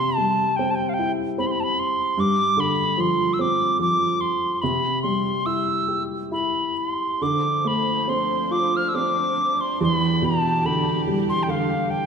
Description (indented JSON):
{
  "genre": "celtic folk, Celtic slow air",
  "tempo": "66-76 BPM",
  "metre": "3/4",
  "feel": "rubato",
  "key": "unclear",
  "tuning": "A4 = 440 Hz",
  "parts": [
    { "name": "wooden whistle", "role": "melody", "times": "0.0-12.1 s", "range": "F5 to F6", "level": "-22 LUFS", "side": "equal", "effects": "none" },
    { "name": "clear upright piano", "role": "accompaniment", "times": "0.0-12.1 s", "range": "E2 to G4", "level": "-24 LUFS", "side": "equal", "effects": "none" },
    { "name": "dark studio string section", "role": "sustained chords", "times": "7.2-12.1 s", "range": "E3 to C5", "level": "-30 LUFS", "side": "right 1 dB", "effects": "none" }
  ],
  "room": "wet scoring stage reverb, RT60 1.6 s",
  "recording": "recorded in a church or concert hall",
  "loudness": "-20 LUFS",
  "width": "side -6 dB against mid",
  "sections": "0.0-12.1 A section",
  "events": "none",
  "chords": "0.0 C; 2.2 G7sus4; 4.6 C; 7.2 Dm7; 9.8 Em7"
}